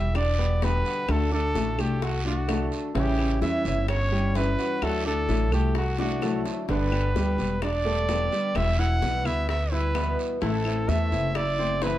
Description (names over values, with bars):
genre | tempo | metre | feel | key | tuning
latin, Cuban son and guajira | 128 BPM | 4/4 | straight | G major | A4 = 440 Hz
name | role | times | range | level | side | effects
warm trumpet | melody | 0.0-12.0 s | F#4 to F#5 | -29 LUFS | right 1 dB | none
flamenco guitar | accompaniment | 0.0-12.0 s | B2 to G4 | -30 LUFS | left 3 dB | none
bright concert grand piano | arpeggios | 0.0-12.0 s | C#3 to E6 | -32 LUFS | right 2 dB | none
upright bass | bass | 0.0-12.0 s | E1 to E2 | -26 LUFS | equal | none
bongos | percussion | 0.1-12.0 s | none | -36 LUFS | left 5 dB | none
claves | percussion | 0.2-11.6 s | none | -41 LUFS | left 3 dB | none
guiro | percussion | 0.2-12.0 s | none | -41 LUFS | right 5 dB | none
room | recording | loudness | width
light reverb | dark, warm production | -23 LUFS | side -13 dB against mid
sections
0.0-12.0 A section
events
drum fill 6.0-6.7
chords
0.0 G; 1.1 D; 3.0 A7; 4.8 Dadd9; 6.7 Gadd9; 8.6 Em; 10.4 Am